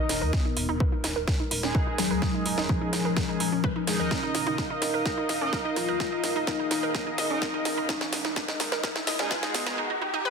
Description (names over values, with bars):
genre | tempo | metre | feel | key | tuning
melodic techno | 127 BPM | 4/4 | straight | unclear | A4 = 440 Hz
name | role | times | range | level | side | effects
soft octave-layered synth lead | melody | 0.0-9.8 s | F3 to F4 | -31 LUFS | left 5 dB | chorus, phaser, sidechain pumping, ping-pong delay
dark analog pad | sustained chords | 0.0-9.8 s | Ab3 to F5 | -38 LUFS | left 1 dB | chorus, vintage 12-bit sampler grit, sidechain pumping
analog pluck | arpeggios | 0.0-10.3 s | Db4 to Eb5 | -33 LUFS | right 3 dB | chorus, sidechain pumping, ping-pong delay
analog synth brass | stabs | 0.0-9.8 s | Ab3 to Eb5 | -31 LUFS | right 2 dB | chorus, sidechain pumping, ping-pong delay
dark detuned saw bass | bass | 0.1-9.8 s | Eb1 to Eb2 | -36 LUFS | equal | sidechain pumping
house drum kit | drums | 0.1-9.8 s | congas, hi-hat, snare drum | -31 LUFS | right 1 dB | sidechain pumping on perc, high-pass filter on perc, high-pass filter on snare, sidechain pumping on hats, high-pass filter on hats
electronic kick drum | drums | 0.3-9.4 s | none | -28 LUFS | equal | none
riser | sound effects | 6.1-10.3 s | none | -37 LUFS | left 1 dB | none
room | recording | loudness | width
moderate digital room reverb, RT60 0.9 s | dense, heavily limited modern master, high-pass filter | -24 LUFS | side -5 dB against mid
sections
0.0-10.3 A section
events
build-up 0.0-10.3; drum fill 0.0-9.8; filter sweep on synth arpeggio sound 0.0-10.3; filter sweep on soft synth lead 0.0-10.3; filter sweep 0.0-10.3; riser 6.1-10.3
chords
0.3 Abm/Eb; 4.1 Eb5; 7.9 Abm/Eb